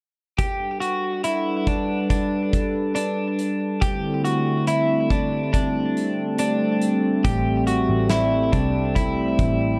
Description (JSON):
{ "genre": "dream pop", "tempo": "70 BPM", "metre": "4/4", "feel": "straight", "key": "G major", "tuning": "A4 = 440 Hz", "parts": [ { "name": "warm analog pad", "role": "sustained chords", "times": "0.4-9.8 s", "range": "D3 to F#5", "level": "-25 LUFS", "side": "equal", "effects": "chorus" }, { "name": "electric guitar at the edge of break-up", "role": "arpeggios", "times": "0.4-9.8 s", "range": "D4 to G4", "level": "-27 LUFS", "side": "equal", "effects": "subtle chorus, delay" }, { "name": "loose indie drum kit", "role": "drums", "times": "0.4-9.6 s", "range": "hi-hat, kick drum, snare drum", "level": "-27 LUFS", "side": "equal", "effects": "none" }, { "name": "vintage muted picked electric bass", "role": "bass", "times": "7.2-9.8 s", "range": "A1 to C2", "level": "-27 LUFS", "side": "equal", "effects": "none" } ], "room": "light reverb, small room ambience", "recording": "dark, warm production", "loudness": "-22 LUFS", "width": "mono", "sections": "0.4-9.8 A section", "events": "none", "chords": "0.4 Gmaj7; 3.8 D7sus4; 7.2 Am7" }